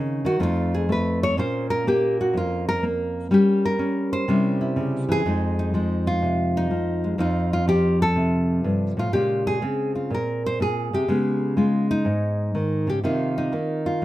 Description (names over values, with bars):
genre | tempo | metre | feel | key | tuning
solo jazz | 124 BPM | 4/4 | swing 68% on 8ths | F minor | A4 = 440 Hz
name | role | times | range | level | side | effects
nylon-string guitar | solo | 0.0-14.0 s | F2 to C#5 | -20 LUFS | equal | none
room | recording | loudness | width
moderate studio ambience, RT60 0.5 s | close, detailed microphones | -20 LUFS | side -15 dB against mid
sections
0.0-5.2 A section; 5.2-14.0 B section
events
nylon-string guitar solo 0.0-5.2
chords
0.4 F7alt; 1.4 Bbm; 3.3 Gdim; 4.3 C; 5.2 Fm7; 7.2 F7; 9.1 Bbm9; 11.1 Db7#11; 13.0 Cm7